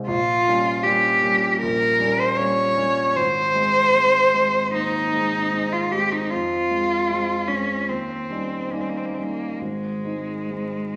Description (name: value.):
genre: classical, romantic duo for cello and grand piano.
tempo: 66-79 BPM.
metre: 4/4.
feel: rubato.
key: Ab major.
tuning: A4 = 440 Hz.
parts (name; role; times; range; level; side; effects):
clear grand piano; accompaniment; 0.0-11.0 s; Ab1 to Eb4; -29 LUFS; equal; none.
clear cello; melody; 0.1-11.0 s; Ab3 to Db5; -22 LUFS; equal; none.
room: wet recital hall reverb, RT60 1.6 s.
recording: vinyl crackle.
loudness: -21 LUFS.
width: mono.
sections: 0.0-11.0 A section.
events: none.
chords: 0.1 Gdim/Bb; 3.2 Ab; 6.3 Fm; 7.9 Eb7; 9.6 Ab.